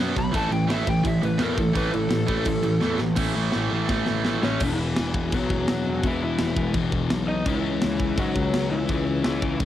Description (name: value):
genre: punk rock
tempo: 168 BPM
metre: 4/4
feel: straight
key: E major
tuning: A4 = 441 Hz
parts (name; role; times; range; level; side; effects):
- sludgy distorted guitar; riff; 0.0-9.7 s; E2 to C#4; -28 LUFS; left 7 dB; overdrive
- tight distorted guitar; riff; 0.0-4.6 s; A2 to B3; -26 LUFS; right 7 dB; distortion
- fuzz picked electric bass; bass; 0.0-9.7 s; E1 to G#2; -28 LUFS; equal; overdrive
- raw garage guitar; melody; 0.2-9.6 s; E3 to B5; -29 LUFS; left 1 dB; overdrive, cassette tape
- tight metal drum kit; drums; 0.2-9.7 s; crash cymbal, kick drum, snare drum; -28 LUFS; equal; cassette tape
room: studio reverb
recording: home recording on cassette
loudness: -21 LUFS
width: side -12 dB against mid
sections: 0.0-3.2 A section; 3.2-4.6 B section; 4.6-9.7 C section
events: overdriven electric guitar solo 0.0-3.2; drum fill 2.8-3.2, 3.2-4.6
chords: 0.3 A5; 4.6 E5; 7.5 C#m